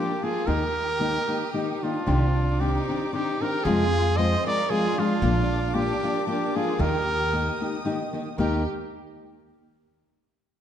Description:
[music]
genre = mexican folk, mariachi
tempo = 114 BPM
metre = 3/4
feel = swing 53% on 8ths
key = Eb major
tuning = A4 = 441 Hz
[part]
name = warm trumpet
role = melody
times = 0.0-8.6 s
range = F4 to Eb5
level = -27 LUFS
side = right 1 dB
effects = none
[part]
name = rich chamber violin section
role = second line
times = 0.0-8.6 s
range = D4 to C5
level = -32 LUFS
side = right 1 dB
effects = none
[part]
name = nylon-string guitar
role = accompaniment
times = 0.0-8.6 s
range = F2 to G4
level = -27 LUFS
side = left 2 dB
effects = none
[part]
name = dark studio violin section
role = sustained chords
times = 0.0-8.6 s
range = Eb4 to Eb6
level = -38 LUFS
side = right 1 dB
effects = none
[part]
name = upright bass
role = bass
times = 0.5-8.6 s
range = Bb1 to F2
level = -26 LUFS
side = right 1 dB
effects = none
[sound]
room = moderate scoring stage reverb, RT60 1.7 s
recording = dark, warm production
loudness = -22 LUFS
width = side -9 dB against mid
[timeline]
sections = 0.0-2.1 A section; 2.1-8.4 B section; 8.4-10.0 C section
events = none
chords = 0.5 Eb; 2.1 Cmadd9; 3.7 Fm; 5.2 Bb; 6.8 Eb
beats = | 0.47 1.00 1.54 | 2.07 2.60 3.13 | 3.66 4.18 4.71 | 5.23 5.75 6.27 | 6.79 7.32 7.85 | 8.38

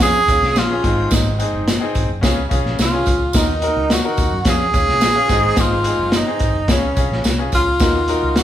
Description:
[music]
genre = uptempo 1960s-style soul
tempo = 108 BPM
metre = 4/4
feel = straight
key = Db major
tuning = A4 = 440 Hz
[part]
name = breathy tenor saxophone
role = melody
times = 0.0-8.4 s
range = Db4 to Ab4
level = -18 LUFS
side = right 1 dB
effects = none
[part]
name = clear grand piano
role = accompaniment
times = 0.0-8.4 s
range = Ab2 to Bb4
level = -23 LUFS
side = left 2 dB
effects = none
[part]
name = vintage muted fingered electric bass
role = bass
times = 0.0-8.4 s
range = Gb1 to Gb2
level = -23 LUFS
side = equal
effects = none
[part]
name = crunchy breakbeat drum kit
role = drums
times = 0.0-8.4 s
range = hi-hat, kick drum, snare drum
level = -19 LUFS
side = equal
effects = none
[part]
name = tambourine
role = percussion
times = 0.0-8.4 s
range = none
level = -29 LUFS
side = right 5 dB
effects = none
[sound]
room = moderate large studio reverb, RT60 1.1 s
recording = band playing live in one room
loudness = -14 LUFS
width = side -11 dB against mid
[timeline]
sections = 0.0-8.4 A section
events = none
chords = 0.0 Db; 0.8 Ab; 2.2 Db; 3.4 Ebm; 4.5 Db; 5.3 Ab; 6.7 Db; 7.8 Ebm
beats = 0.01 0.56 | 1.12 1.68 2.24 2.79 | 3.35 3.91 4.46 5.02 | 5.58 6.13 6.69 7.25 | 7.80 8.36

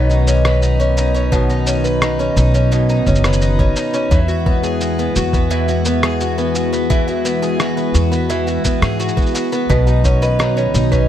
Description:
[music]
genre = folktronica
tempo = 86 BPM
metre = 4/4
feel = straight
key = B major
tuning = A4 = 440 Hz
[part]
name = warbly tape-like pad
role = sustained chords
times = 0.0-11.1 s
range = D#3 to F#4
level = -22 LUFS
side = equal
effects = chorus, built-in reverb, plate reverb
[part]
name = picked twelve-string acoustic guitar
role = arpeggios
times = 0.0-11.1 s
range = B2 to B4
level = -18 LUFS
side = equal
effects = ping-pong delay, plate reverb
[part]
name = upright bass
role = bass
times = 0.0-11.1 s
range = F#1 to G#2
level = -17 LUFS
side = equal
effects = none
[part]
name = electronic cabasa and rim click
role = drums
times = 0.1-11.1 s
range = none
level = -23 LUFS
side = equal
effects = none
[part]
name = electronic kick drum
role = drums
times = 1.3-11.1 s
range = none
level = -17 LUFS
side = equal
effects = none
[part]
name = marimba with hard mallets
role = second line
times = 9.7-11.1 s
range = B4 to D#5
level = -21 LUFS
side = right 1 dB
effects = tape echo, plate reverb
[sound]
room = light reverb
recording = dark, warm production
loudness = -13 LUFS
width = side -11 dB against mid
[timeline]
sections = 0.0-11.1 A section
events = none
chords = 0.0 Badd9; 4.1 Eadd9; 9.7 Badd9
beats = 0.62 | 1.32 2.02 2.72 3.42 | 4.11 4.81 5.51 6.21 | 6.90 7.60 8.30 9.00 | 9.70 10.39

